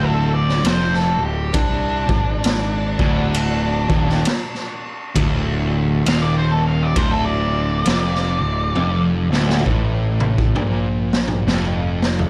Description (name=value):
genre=stoner and doom metal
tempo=66 BPM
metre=4/4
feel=swing 61% on 8ths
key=D minor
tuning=A4 = 441 Hz
part: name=octave-fuzz lead guitar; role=melody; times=0.0-9.0 s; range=D4 to F5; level=-27 LUFS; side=equal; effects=distortion, delay
part: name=fuzz guitar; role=riff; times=0.0-12.3 s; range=D2 to C3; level=-23 LUFS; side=equal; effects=distortion
part: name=fuzz picked electric bass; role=bass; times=0.0-12.3 s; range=D1 to C2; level=-25 LUFS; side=equal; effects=overdrive
part: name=raw garage drum kit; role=drums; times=0.5-12.3 s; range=kick drum, ride cymbal, snare drum, toms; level=-24 LUFS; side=equal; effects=none
room=studio reverb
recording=dark, warm production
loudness=-19 LUFS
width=mono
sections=0.0-12.3 A section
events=lead electric guitar solo 0.0-12.3; drum fill 8.8-12.3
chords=0.0 Dm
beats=0.64 | 1.54 2.44 3.35 4.25 | 5.15 6.05 6.96 7.86 | 8.76 9.66 10.56 11.47